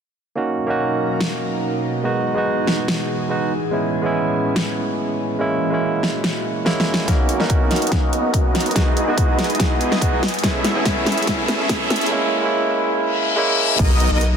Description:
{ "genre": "future bass", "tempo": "143 BPM", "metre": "4/4", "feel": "half-time", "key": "B major", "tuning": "A4 = 439 Hz", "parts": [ { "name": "barky tine electric piano", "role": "accompaniment", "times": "0.4-13.8 s", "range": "G#3 to D#5", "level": "-21 LUFS", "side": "right 2 dB", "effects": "sidechain pumping, ping-pong delay" }, { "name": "airy breathy pad", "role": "sustained chords", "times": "0.5-12.1 s", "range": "A2 to E6", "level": "-28 LUFS", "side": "right 1 dB", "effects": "chorus, phaser, sidechain pumping" }, { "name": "dubstep drum kit", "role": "drums", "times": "1.2-14.3 s", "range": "crash cymbal, hi-hat, snare drum", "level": "-23 LUFS", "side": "equal", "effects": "overdrive" }, { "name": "supersaw chords", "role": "riff", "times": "7.1-14.4 s", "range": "B3 to E5", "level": "-23 LUFS", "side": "equal", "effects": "sidechain pumping, low-pass filter, ping-pong delay" }, { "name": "saturated sub bass", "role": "bass", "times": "7.1-14.4 s", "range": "E1 to B1", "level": "-26 LUFS", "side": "equal", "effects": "none" }, { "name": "electronic kick drum", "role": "drums", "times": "7.1-13.9 s", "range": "none", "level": "-20 LUFS", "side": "equal", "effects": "none" }, { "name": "riser, reverse cymbal and impact", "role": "sound effects", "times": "9.4-14.4 s", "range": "none", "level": "-25 LUFS", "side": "left 3 dB", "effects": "none" }, { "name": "airy dreamy lead", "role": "arpeggios", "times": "13.8-14.4 s", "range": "D#5", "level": "-24 LUFS", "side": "left 1 dB", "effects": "chorus, sidechain pumping" } ], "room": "light reverb", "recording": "dense, heavily limited modern master, high-pass filter", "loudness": "-17 LUFS", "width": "side -7 dB against mid", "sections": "0.4-7.1 A section; 7.1-13.8 B section", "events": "drum fill 6.7-7.1, 7.1-12.1; build-up 7.1-13.8; filter sweep on supersaw synth 7.1-13.8; filter sweep 7.1-13.8; riser 9.4-12.1; reverse cymbal 13.1-13.8; impact 13.8-14.4", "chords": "0.4 Bmaj7; 2.0 Emaj7; 3.5 Amaj7; 5.4 F#7; 7.1 Bmaj7; 8.8 Emaj7; 10.2 Amaj7; 12.1 A#m7b5/G#; 13.8 Bmaj7", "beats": "| 0.37 0.79 1.21 1.62 | 2.04 2.46 2.88 3.30 | 3.72 4.14 4.56 4.98 | 5.40 5.82 6.24 6.66 | 7.08 7.50 7.92 8.34 | 8.76 9.18 9.60 10.02 | 10.44 10.86 11.28 11.69 | 12.11 12.53 12.95 13.37 | 13.79 14.21" }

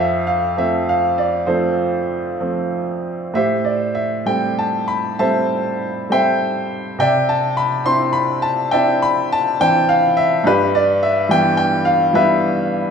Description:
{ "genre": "classical, lyrical solo piano", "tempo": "63-72 BPM", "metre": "4/4", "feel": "rubato", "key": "A minor", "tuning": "A4 = 441 Hz", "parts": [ { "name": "clear upright piano", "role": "solo", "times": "0.0-12.9 s", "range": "F2 to C6", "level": "-15 LUFS", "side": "equal", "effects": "none" } ], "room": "wet recital hall reverb, RT60 1.4 s", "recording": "none", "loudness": "-15 LUFS", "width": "side -6 dB against mid", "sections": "0.0-12.9 A section", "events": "none", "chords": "0.0 F; 3.3 Am7; 7.0 Cadd9; 10.5 G6", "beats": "0.58 1.47 2.40 | 3.34 4.26 5.18 6.10 | 6.98 7.85 8.73 9.61 | 10.46 11.30 12.14" }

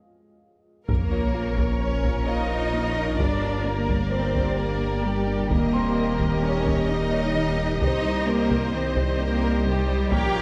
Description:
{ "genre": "cinematic, hybrid orchestral and electronic film score", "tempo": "130 BPM", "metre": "5/4", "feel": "straight", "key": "Bb dorian", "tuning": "A4 = 443 Hz", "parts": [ { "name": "felt-muted upright piano", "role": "texture", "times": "0.0-10.4 s", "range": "C4 to C6", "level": "-38 LUFS", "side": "equal", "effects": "digital delay" }, { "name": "warm symphonic violin section", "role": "melody", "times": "0.9-10.4 s", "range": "Db5 to F5", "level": "-38 LUFS", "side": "equal", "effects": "none" }, { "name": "warm symphonic violin section", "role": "second line", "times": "0.9-10.4 s", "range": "G4 to G5", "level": "-35 LUFS", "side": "equal", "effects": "none" }, { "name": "clear symphonic viola section", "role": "accompaniment", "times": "0.9-10.4 s", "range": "G4 to Db5", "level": "-35 LUFS", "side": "equal", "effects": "none" }, { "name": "deep dark ambient pad", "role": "sustained chords", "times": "1.8-10.4 s", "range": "F3 to Eb5", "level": "-36 LUFS", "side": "equal", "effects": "none" }, { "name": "warm trombone section", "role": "sustained chords", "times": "0.9-10.4 s", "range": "C3 to Db4", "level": "-37 LUFS", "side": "equal", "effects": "none" }, { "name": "thumb-piano-like synth pluck", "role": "arpeggios", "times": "0.9-10.4 s", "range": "C3 to Bb4", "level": "-35 LUFS", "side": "equal", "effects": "chorus, digital delay" }, { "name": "rich symphonic double bass section", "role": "bass", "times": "0.9-10.4 s", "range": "G1 to Eb2", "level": "-32 LUFS", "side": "equal", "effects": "none" }, { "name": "saturated sub bass", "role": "bass", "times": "0.9-10.4 s", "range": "Eb1 to C2", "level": "-32 LUFS", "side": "equal", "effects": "none" }, { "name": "warm symphonic cello section", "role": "bass", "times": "0.9-10.4 s", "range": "G3 to G4", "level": "-30 LUFS", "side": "equal", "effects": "none" }, { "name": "solo taiko drums", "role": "drums", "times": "0.9-10.4 s", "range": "none", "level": "-31 LUFS", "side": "equal", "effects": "none" }, { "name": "sub drop", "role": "sound effects", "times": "0.9-3.2 s", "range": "none", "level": "-34 LUFS", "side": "equal", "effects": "none" } ], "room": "moderate scoring stage reverb, RT60 1.9 s", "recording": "none", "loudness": "-24 LUFS", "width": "mono", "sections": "0.9-10.4 A section", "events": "break 0.0-0.9; impact 0.9-3.2", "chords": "0.0 N.C.; 0.9 Bbm; 3.2 Gm; 5.5 Eb; 7.8 Cm", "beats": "0.43 | 0.89 1.35 1.81 2.27 2.74 | 3.20 3.66 4.12 4.58 5.04 | 5.51 5.97 6.43 6.89 7.35 | 7.81 8.28 8.74 9.20 9.66 | 10.12" }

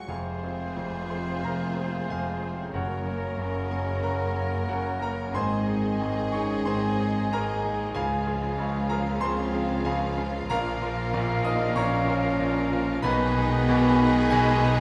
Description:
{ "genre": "classical", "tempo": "93 BPM", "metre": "4/4", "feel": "rubato", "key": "Db major", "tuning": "A4 = 441 Hz", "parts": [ { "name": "bright concert grand piano", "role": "melody", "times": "0.0-14.8 s", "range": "F1 to D#6", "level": "-30 LUFS", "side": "equal", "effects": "none" }, { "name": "rich studio violin section", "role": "second line", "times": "0.0-14.8 s", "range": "F4 to Bb4", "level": "-40 LUFS", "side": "equal", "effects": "none" }, { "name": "warm French horn section", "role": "sustained chords", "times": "0.0-14.8 s", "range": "Gb3 to D#4", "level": "-35 LUFS", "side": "equal", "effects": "none" }, { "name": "warm studio violin section", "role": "melody", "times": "0.1-14.8 s", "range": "Bb4 to F5", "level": "-44 LUFS", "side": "equal", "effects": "none" }, { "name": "clear oboe", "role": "second line", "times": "0.1-14.8 s", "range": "Ab4 to C5", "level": "-40 LUFS", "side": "equal", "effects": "none" }, { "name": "mellow concert flute", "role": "second line", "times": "0.1-14.8 s", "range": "F5 to G#5", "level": "-38 LUFS", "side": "equal", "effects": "none" }, { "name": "clear bassoon", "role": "accompaniment", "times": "0.1-14.8 s", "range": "C3 to F3", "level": "-39 LUFS", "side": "equal", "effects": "none" }, { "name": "rich chamber viola section", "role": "accompaniment", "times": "0.1-14.8 s", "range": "Ab3 to F4", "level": "-40 LUFS", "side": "equal", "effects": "none" }, { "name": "rich chamber cello section", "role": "bass", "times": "0.1-14.8 s", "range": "F2 to Db3", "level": "-36 LUFS", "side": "equal", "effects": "none" }, { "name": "rich studio double bass section", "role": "bass", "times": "0.1-14.8 s", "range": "F1 to Db2", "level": "-36 LUFS", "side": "equal", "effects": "none" }, { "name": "timpani", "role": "percussion", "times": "2.8-3.7 s", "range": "Gb2", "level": "-41 LUFS", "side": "equal", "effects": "none" } ], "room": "wet recital hall reverb, RT60 1.6 s", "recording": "none", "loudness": "-26 LUFS", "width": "mono", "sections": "0.1-14.8 A section", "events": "none", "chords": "0.1 Fm; 2.7 Gb; 5.4 Ab; 8.0 Db; 10.5 A#m; 13.0 G#m/B", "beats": "| 0.07 0.76 1.43 2.09 | 2.74 3.39 4.05 4.70 | 5.36 6.01 6.67 7.32 | 7.95 8.59 9.22 9.85 | 10.50 11.14 11.76 12.39 | 13.03 13.67 14.31" }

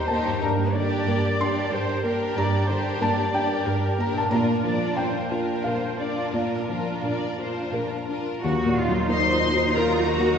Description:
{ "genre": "cinematic, emotional film score for orchestra", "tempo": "86-94 BPM", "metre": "3/4", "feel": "rubato", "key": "unclear", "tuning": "A4 = 440 Hz", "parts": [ { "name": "rich symphonic violin section", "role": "melody", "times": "0.0-10.4 s", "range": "Bb4 to C6", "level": "-32 LUFS", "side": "left 3 dB", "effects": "none" }, { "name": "rich symphonic violin section", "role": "second line", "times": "0.0-10.4 s", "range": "D4 to C5", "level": "-30 LUFS", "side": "left 1 dB", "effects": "none" }, { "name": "felt-muted upright piano", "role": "accompaniment", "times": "0.0-10.4 s", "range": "Eb2 to C6", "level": "-26 LUFS", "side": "left 1 dB", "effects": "none" }, { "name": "rich symphonic viola section", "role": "accompaniment", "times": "0.0-10.4 s", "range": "Gb3 to D5", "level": "-31 LUFS", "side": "right 2 dB", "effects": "none" }, { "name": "concert harp", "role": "arpeggios", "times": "0.0-10.4 s", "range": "G2 to Eb5", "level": "-32 LUFS", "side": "left 2 dB", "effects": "none" }, { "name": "rich symphonic cello section", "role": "bass", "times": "0.0-10.4 s", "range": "Eb2 to Gb4", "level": "-28 LUFS", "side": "right 3 dB", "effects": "none" }, { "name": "clear symphonic double bass section", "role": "bass", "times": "8.4-10.4 s", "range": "Eb2", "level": "-30 LUFS", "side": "right 3 dB", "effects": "none" } ], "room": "wet concert hall reverb, RT60 1.8 s", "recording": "heard from further back in the room, nothing above 7.9 kHz", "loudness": "-21 LUFS", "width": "side -7 dB against mid", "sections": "0.0-8.4 A section; 8.4-10.4 B section", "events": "none", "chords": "0.4 Gm; 4.3 Bb; 8.4 Ebmadd9", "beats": "| 0.43 1.08 1.73 | 2.37 3.01 3.67 | 4.32 4.98 5.66 | 6.34 7.04 7.74 | 8.43 9.10 9.75" }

